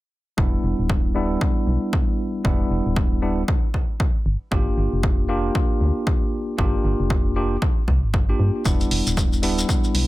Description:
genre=deep house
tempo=116 BPM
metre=4/4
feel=swing 60% on 16ths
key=E minor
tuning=A4 = 444 Hz
part: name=tine electric piano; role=stabs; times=0.4-10.1 s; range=G3 to G4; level=-24 LUFS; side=equal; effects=medium stereo tremolo, sidechain pumping, low-pass filter, ping-pong delay
part: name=organ-like FM bass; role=bass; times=0.4-10.1 s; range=D1 to G2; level=-23 LUFS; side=equal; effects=sidechain pumping
part: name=electronic kick drum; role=drums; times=0.4-9.8 s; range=none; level=-21 LUFS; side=equal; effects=none
part: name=shekere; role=percussion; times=8.7-9.9 s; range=none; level=-29 LUFS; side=left 2 dB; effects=none
part: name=electronic hi-hat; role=drums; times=8.8-10.1 s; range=none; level=-26 LUFS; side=right 2 dB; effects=none
room=little or no reverb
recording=none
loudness=-19 LUFS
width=side -17 dB against mid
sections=0.4-10.1 A section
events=filter sweep on tine electric piano 0.4-10.1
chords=0.4 Em7; 4.3 Gm7; 8.7 Em7

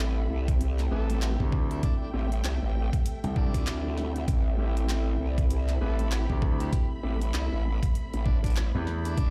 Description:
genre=glitch hop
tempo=98 BPM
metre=4/4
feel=swing 60% on 16ths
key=A minor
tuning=A4 = 440 Hz
part: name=warbly tape-like pad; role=sustained chords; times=0.0-9.3 s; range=G3 to B4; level=-45 LUFS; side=equal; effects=chorus, built-in reverb, vintage 12-bit sampler grit, sidechain pumping
part: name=mellow electric guitar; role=stabs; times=0.0-8.8 s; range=C4 to B4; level=-39 LUFS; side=equal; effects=vintage 12-bit sampler grit, sidechain pumping, digital delay
part: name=growl bass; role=bass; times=0.0-9.3 s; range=A1 to D2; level=-30 LUFS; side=equal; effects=chorus, overdrive
part: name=dark studio string section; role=texture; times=0.0-9.3 s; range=A4 to B5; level=-44 LUFS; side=equal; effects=sidechain pumping
part: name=dubstep drum kit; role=drums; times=0.5-9.3 s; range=handclaps, hi-hat, snare drum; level=-40 LUFS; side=equal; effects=none
part: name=electronic kick drum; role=drums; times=0.5-9.3 s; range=none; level=-28 LUFS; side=equal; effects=none
part: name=overdriven harmonica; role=melody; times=0.9-9.3 s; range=D4 to A4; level=-44 LUFS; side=equal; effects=digital delay
part: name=gritty slap bass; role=bass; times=1.4-9.2 s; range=C2 to E2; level=-32 LUFS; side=equal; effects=overdrive, tube saturation
room=little or no reverb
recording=played on a big sound system in a bare room, large studio reverb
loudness=-28 LUFS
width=mono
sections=0.0-9.3 A section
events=none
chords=0.0 Am7

